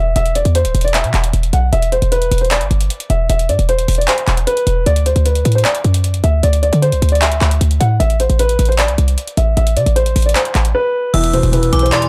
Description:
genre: hip hop, trap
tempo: 153 BPM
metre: 4/4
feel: half-time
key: unclear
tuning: A4 = 439 Hz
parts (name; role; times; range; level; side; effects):
- dark baby grand piano; melody; 0.0-12.1 s; B4 to F#5; -20 LUFS; equal; low-pass filter
- short 808-style bass; bass; 0.0-11.9 s; D1 to D3; -16 LUFS; equal; none
- booming analog drum machine; drums; 0.2-12.1 s; crash cymbal, handclaps, hi-hat; -23 LUFS; equal; none
- metallic FM bell; second line; 11.1-12.1 s; C6 to E6; -23 LUFS; equal; chorus
- dark baby grand piano; accompaniment; 11.1-12.1 s; E2 to E3; -18 LUFS; equal; low-pass filter
- dark analog pad; sustained chords; 11.1-12.1 s; none; barely audible; none; none
room: little or no reverb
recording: dry, gritty hardware recording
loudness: -15 LUFS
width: mono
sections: 0.0-11.1 A section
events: break 10.7-11.1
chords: 0.0 N.C.; 8.0 Am; 11.1 Em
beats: | 0.16 0.55 0.94 1.33 | 1.73 2.12 2.51 2.90 | 3.29 3.69 4.08 4.47 | 4.86 5.26 5.65 6.04 | 6.43 6.83 7.22 7.61 | 8.00 8.39 8.79 9.18 | 9.57 9.96 10.35 10.75 | 11.14 11.53 11.92

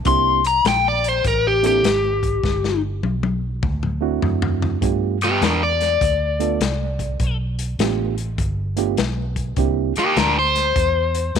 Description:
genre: electric blues shuffle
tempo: 101 BPM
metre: 4/4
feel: swing 65% on 8ths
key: unclear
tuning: A4 = 441 Hz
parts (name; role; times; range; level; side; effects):
- vintage muted fingered electric bass; bass; 0.0-11.4 s; G1 to G2; -23 LUFS; right 1 dB; none
- overdriven semi-hollow guitar; melody; 0.1-11.4 s; Bb3 to C6; -18 LUFS; left 3 dB; phaser
- reed electric piano; accompaniment; 0.1-9.9 s; A3 to A4; -24 LUFS; right 17 dB; none
- crunchy breakbeat drum kit; drums; 0.1-11.4 s; hi-hat, kick drum, snare drum, toms; -24 LUFS; left 3 dB; none
room: light reverb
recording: 1960s-style stereo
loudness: -17 LUFS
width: side -7 dB against mid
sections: 0.0-4.8 A section; 4.8-11.4 B section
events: drum fill 2.4-4.8; overdriven electric guitar solo 4.8-11.4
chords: 0.1 C7; 2.4 G; 3.6 D7; 4.8 G7; 9.6 C7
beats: | 0.06 0.65 1.25 1.84 | 2.44 3.03 3.63 4.22 | 4.82 5.41 6.00 6.60 | 7.19 7.79 8.38 8.98 | 9.57 10.17 10.76 11.35

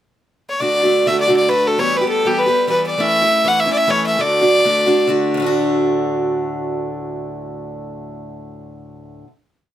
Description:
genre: celtic folk, Celtic reel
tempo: 202 BPM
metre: 4/4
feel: swing 57% on 8ths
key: D major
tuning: A4 = 440 Hz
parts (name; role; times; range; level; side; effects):
- bright fiddle; melody; 0.5-5.1 s; G4 to F#5; -15 LUFS; equal; none
- picked steel-string acoustic guitar; accompaniment; 0.6-9.3 s; D2 to G4; -19 LUFS; right 1 dB; none
room: light reverb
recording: close, detailed microphones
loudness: -14 LUFS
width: side -11 dB against mid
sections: 0.0-0.6 pickup bar; 0.6-5.4 A section; 5.4-7.7 final chord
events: none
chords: 0.0 N.C.; 0.6 D; 1.8 Em; 3.0 A; 4.2 D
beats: 0.01 0.31 | 0.60 0.90 1.20 1.50 | 1.80 2.09 2.39 2.69 | 2.99 3.29 3.59 3.88 | 4.18 4.48 4.78 5.08 | 5.38 5.67 5.97 6.27 | 6.56 6.86 7.16 7.45

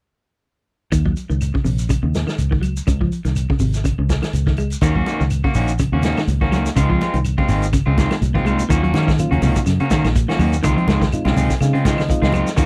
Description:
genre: afrobeat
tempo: 124 BPM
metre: 4/4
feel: swing 55% on 16ths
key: Eb dorian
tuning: A4 = 436 Hz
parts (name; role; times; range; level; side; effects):
- semi-hollow electric guitar; arpeggios; 0.9-12.7 s; C3 to Ab3; -25 LUFS; equal; none
- fingered electric bass; bass; 0.9-12.7 s; Ab1 to Eb3; -22 LUFS; equal; none
- vintage drum kit; drums; 0.9-12.7 s; hi-hat, kick drum, snare drum; -24 LUFS; equal; none
- claves; percussion; 0.9-12.7 s; none; -41 LUFS; equal; none
- shekere; percussion; 0.9-12.7 s; none; -31 LUFS; equal; none
- electric guitar at the edge of break-up; stabs; 4.8-12.7 s; Eb3 to Gb4; -24 LUFS; equal; none
- congas; percussion; 5.1-12.5 s; none; -30 LUFS; equal; none
- mellow reed electric piano; accompaniment; 8.7-12.7 s; Gb3 to Ab5; -27 LUFS; equal; none
room: little or no reverb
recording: dry, close 1970s-style studio recording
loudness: -18 LUFS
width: mono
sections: 0.9-8.7 A section; 8.7-12.7 B section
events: reed electric piano fill 11.1-12.6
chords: 0.9 Ebm7; 2.9 Dbmaj7sus2; 4.8 Ebm7; 6.8 Dbmaj9; 8.7 Ebm7; 10.6 Dbmaj9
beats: | 0.93 1.42 1.90 2.39 | 2.88 3.37 3.85 4.34 | 4.83 5.32 5.80 6.29 | 6.77 7.26 7.74 8.22 | 8.71 9.19 9.67 10.16 | 10.64 11.12 11.61 12.09 | 12.57

